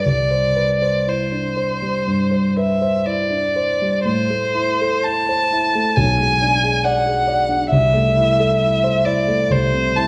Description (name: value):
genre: classical, romantic duo for violin and grand piano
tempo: 58-70 BPM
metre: 4/4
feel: rubato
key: C major, A minor from 4.1 s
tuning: A4 = 440 Hz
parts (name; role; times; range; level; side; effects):
- rich violin; melody; 0.0-10.1 s; C5 to A5; -20 LUFS; equal; none
- dark concert grand piano; accompaniment; 0.0-10.1 s; B1 to D5; -22 LUFS; equal; none
room: wet recital hall reverb, RT60 1.2 s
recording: worn, warbling old tape, cassette tape, warbly pitch drift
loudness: -18 LUFS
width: mono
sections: 0.0-4.1 A section; 4.1-10.1 B section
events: none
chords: 0.0 C; 4.1 Am; 6.0 G#dim/B; 7.7 Am/C